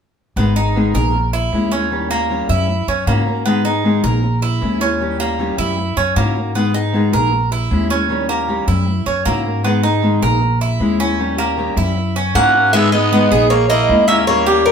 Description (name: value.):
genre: latin, Cuban son and guajira.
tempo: 155 BPM.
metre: 4/4.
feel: straight.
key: G# minor.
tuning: A4 = 440 Hz.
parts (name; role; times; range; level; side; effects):
fingerpicked steel-string acoustic guitar; accompaniment; 0.4-14.7 s; C#3 to G#4; -19 LUFS; left 3 dB; none.
Cuban tres; arpeggios; 0.4-14.7 s; G3 to A#4; -19 LUFS; right 3 dB; none.
upright bass; bass; 0.4-14.7 s; G#1 to G#2; -19 LUFS; equal; none.
Cuban tres; melody; 12.4-14.7 s; A#4 to F#5; -14 LUFS; right 1 dB; none.
growling trumpet; second line; 12.4-14.7 s; G3 to C#4; -20 LUFS; left 3 dB; none.
room: moderate studio reverb, RT60 0.7 s.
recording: band playing live in one room.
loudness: -14 LUFS.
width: side -7 dB against mid.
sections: 0.4-12.7 A section; 12.7-14.7 B section.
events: none.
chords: 0.4 G#m; 1.1 A#m7b5; 1.9 D#7; 2.7 F#7; 3.5 G#m; 4.2 A#m7b5; 5.0 D#7; 5.8 F#7; 6.5 G#m; 7.3 A#m7b5; 8.1 D#7; 8.9 F#7; 9.6 G#m; 10.4 A#m7b5; 11.2 D#7; 12.0 F#7; 12.7 G#m; 13.5 A#m7b5.